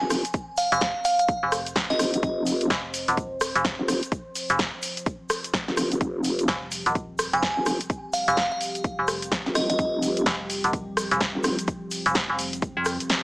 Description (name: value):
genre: bass house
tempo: 127 BPM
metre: 4/4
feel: swing 61% on 16ths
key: unclear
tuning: A4 = 443 Hz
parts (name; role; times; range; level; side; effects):
- dark analog pad; sustained chords; 0.0-13.2 s; F3 to C5; -36 LUFS; equal; lush chorus, sidechain pumping
- vowel-sweep wobble bass; bass; 0.0-11.6 s; F1; -25 LUFS; equal; chorus, overdrive, sidechain pumping
- house drum kit; drums; 0.1-13.2 s; hi-hat, rim click, snare drum; -27 LUFS; equal; none
- egg shaker; percussion; 0.1-13.2 s; none; -39 LUFS; right 1 dB; none
- electronic kick drum; drums; 0.3-12.7 s; none; -28 LUFS; equal; none
- glassy synth bell; melody; 0.6-2.4, 7.3-9.8 s; Eb5 to Ab5; -26 LUFS; right 1 dB; chorus, phaser, tremolo, tape echo
- metallic FM bass; bass; 0.7-13.0 s; Eb1 to F2; -25 LUFS; equal; overdrive, sidechain pumping
room: light reverb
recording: small speaker sound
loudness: -22 LUFS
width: side -24 dB against mid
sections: 0.0-13.2 A section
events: none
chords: 0.0 F5